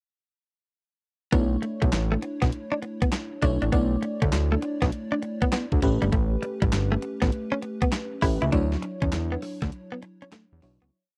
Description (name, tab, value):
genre	R&B, new jack swing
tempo	100 BPM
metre	4/4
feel	swing 65% on 16ths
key	B minor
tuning	A4 = 440 Hz
part	FM electric piano with soft pad layer	accompaniment	1.3-10.9 s	F#3 to D5	-33 LUFS	equal	chorus
part	direct-recorded clean electric guitar	riff	1.3-10.9 s	G3 to E4	-30 LUFS	equal	lush chorus
part	fat analog bass	bass	1.3-10.9 s	G1 to E2	-28 LUFS	equal	none
part	crisp 8-bit digital drum machine	drums	1.3-10.9 s	handclaps, hi-hat, kick drum, snare drum	-28 LUFS	equal	none
room	little or no reverb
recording	dry, close 1970s-style studio recording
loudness	-26 LUFS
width	mono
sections	1.3-10.9 verse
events	fade-out 8.5-10.9; break 9.7-10.9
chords	1.3 Bm11; 5.8 A9; 8.5 Dmaj9